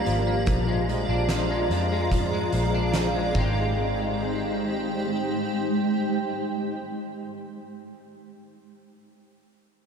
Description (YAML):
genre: dream pop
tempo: 73 BPM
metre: 4/4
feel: straight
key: Ab lydian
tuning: A4 = 442 Hz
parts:
  - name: granular cloud pad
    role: sustained chords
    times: 0.0-7.3 s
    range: Ab3 to Bb5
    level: -27 LUFS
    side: right 2 dB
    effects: built-in reverb
  - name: electric guitar at the edge of break-up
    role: arpeggios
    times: 0.0-7.4 s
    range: Eb3 to G4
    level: -29 LUFS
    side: left 3 dB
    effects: ensemble chorus, ping-pong delay
  - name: vintage muted fingered electric bass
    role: bass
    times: 0.0-7.3 s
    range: Ab1 to F2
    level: -28 LUFS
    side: equal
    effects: none
  - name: oversized low-tuned drum kit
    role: drums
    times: 0.1-3.5 s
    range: hi-hat, kick drum, ride cymbal, snare drum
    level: -30 LUFS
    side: right 1 dB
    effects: none
room: moderate lush hall reverb, RT60 2.8 s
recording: dark, warm production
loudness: -23 LUFS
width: side -6 dB against mid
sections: 0.0-3.8 A section; 3.8-7.0 B section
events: none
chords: 0.5 Bb7; 3.4 Abmaj7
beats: | 0.47 1.29 2.12 2.94 | 3.76 4.58 5.41 6.23